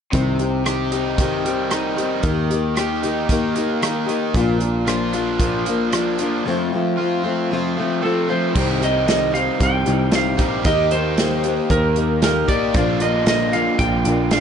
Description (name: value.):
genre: folk rock and heartland rock.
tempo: 114 BPM.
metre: 4/4.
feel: straight.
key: C dorian.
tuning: A4 = 440 Hz.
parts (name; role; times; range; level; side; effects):
picked plugged-in steel-string acoustic guitar; accompaniment; 0.1-14.4 s; F2 to G4; -22 LUFS; left 5 dB; none.
raw garage guitar; riff; 0.1-14.4 s; F2 to G4; -24 LUFS; right 3 dB; overdrive.
picked electric bass; bass; 0.1-14.4 s; Bb1 to Eb2; -24 LUFS; right 1 dB; none.
natural country drum kit; drums; 0.1-14.4 s; crash cymbal, hi-hat, kick drum, rim click, snare drum; -23 LUFS; right 1 dB; none.
clean lap steel guitar; melody; 8.0-14.4 s; A4 to G5; -21 LUFS; right 2 dB; digital delay.
room: light reverb, studio reverb.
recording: nothing above 10.7 kHz.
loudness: -17 LUFS.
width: side -7 dB against mid.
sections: 0.1-8.6 A section; 8.6-14.4 B section.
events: none.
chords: 0.1 Cm; 2.2 Eb; 4.3 Bb; 6.4 F; 8.6 Cm; 10.7 Eb; 12.8 Bb.